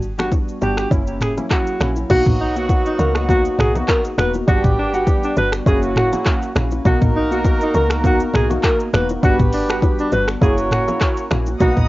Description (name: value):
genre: afrobeats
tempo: 101 BPM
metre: 4/4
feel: swing 55% on 16ths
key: B major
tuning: A4 = 440 Hz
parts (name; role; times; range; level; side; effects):
- woody log drum bass; bass; 0.0-11.9 s; E1 to C#2; -22 LUFS; equal; none
- afro-pop drum kit; drums; 0.0-11.9 s; crash cymbal, finger snaps, handclaps, hi-hat, kick drum, rim click, shaker, toms; -18 LUFS; equal; cassette tape
- breathy alto saxophone; melody; 0.2-11.8 s; D4 to B4; -21 LUFS; equal; cassette tape, tape echo, plate reverb
- glassy digital keys; accompaniment; 0.2-11.8 s; F#3 to F#5; -23 LUFS; left 1 dB; chorus
- bongos and congas; percussion; 0.2-11.9 s; none; -26 LUFS; left 2 dB; none
- warm horn section; second line; 2.1-11.9 s; F#3 to D#5; -24 LUFS; right 2 dB; plate reverb
- warm studio string section; sustained chords; 11.6-11.9 s; B3 to D#6; -29 LUFS; left 1 dB; sidechain pumping
room: light reverb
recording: home recording on cassette, nothing above 7.5 kHz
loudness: -15 LUFS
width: side -18 dB against mid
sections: 0.0-2.1 A section; 2.1-11.9 B section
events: none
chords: 0.0 Gmaj7; 0.9 F#7; 2.1 Bmaj7; 4.5 Gmaj7; 5.7 F#7; 6.9 Bmaj7; 9.2 Gmaj7; 10.4 F#7